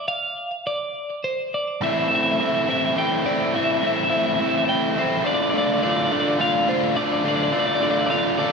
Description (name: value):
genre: rock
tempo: 105 BPM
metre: 3/4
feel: straight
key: A minor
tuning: A4 = 440 Hz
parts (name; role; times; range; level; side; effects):
- twelve-string electric guitar; melody; 0.0-8.5 s; C5 to G5; -23 LUFS; equal; digital delay
- biting overdriven guitar; riff; 1.8-8.5 s; A2 to F4; -21 LUFS; equal; slapback echo
room: wet recital hall reverb, RT60 1.4 s, digital ambience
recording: big arena sound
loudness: -19 LUFS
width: side -5 dB against mid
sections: 0.0-1.8 A section; 1.8-8.5 B section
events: build-up 1.8-8.5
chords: 0.0 N.C.; 1.8 Am; 5.3 Dm